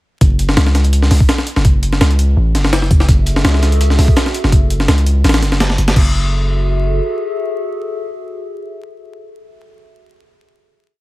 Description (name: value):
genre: drum and bass, jungle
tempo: 167 BPM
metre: 4/4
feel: swing 53% on 16ths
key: F# minor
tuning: A4 = 438 Hz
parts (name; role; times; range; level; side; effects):
- long sustained 808-style bass; bass; 0.2-7.0 s; F#1 to C#2; -13 LUFS; equal; tube saturation
- breakbeat sampler-style drum kit; drums; 0.2-6.0 s; crash cymbal, hi-hat, kick drum, snare drum; -14 LUFS; equal; none
- warbly tape-like pad; sustained chords; 3.3-9.6 s; F#4 to E5; -24 LUFS; equal; chorus, built-in reverb, vintage 12-bit sampler grit
- crunchy breakbeat drum kit; drums; 3.1-4.4 s; hi-hat, snare drum; -30 LUFS; right 2 dB; none
room: studio ambience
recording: vinyl crackle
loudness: -11 LUFS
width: side -18 dB against mid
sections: 0.2-6.0 drop; 6.0-8.8 final chord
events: drop 0.2-6.0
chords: 0.2 F#m9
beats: | 0.21 0.57 0.93 1.29 | 1.65 2.01 2.37 2.73 | 3.09 3.45 3.81 4.17 | 4.52 4.88 5.24 5.60 | 5.96 6.32 6.68 7.04 | 7.40 7.76 8.12 8.48